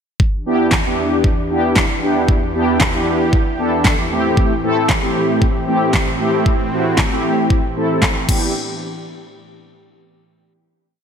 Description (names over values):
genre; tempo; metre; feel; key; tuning
dance-pop; 115 BPM; 4/4; straight; E minor; A4 = 440 Hz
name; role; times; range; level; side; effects
sweeping resonant pad; sustained chords; 0.2-8.5 s; E2 to G4; -24 LUFS; equal; chorus, sidechain pumping
pop drum kit; drums; 0.2-8.4 s; crash cymbal, handclaps, kick drum, snare drum; -17 LUFS; equal; gated reverb
mellow synth brass; accompaniment; 0.5-8.5 s; A3 to A4; -17 LUFS; equal; chorus, sidechain pumping
room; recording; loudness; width
moderate lush hall reverb, RT60 2.5 s; bright 1980s-style digital production; -14 LUFS; side -7 dB against mid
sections
0.2-8.5 verse; 8.5-10.6 final hit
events
none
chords
0.2 Em7; 4.1 Am7; 8.3 Em7; 8.5 N.C.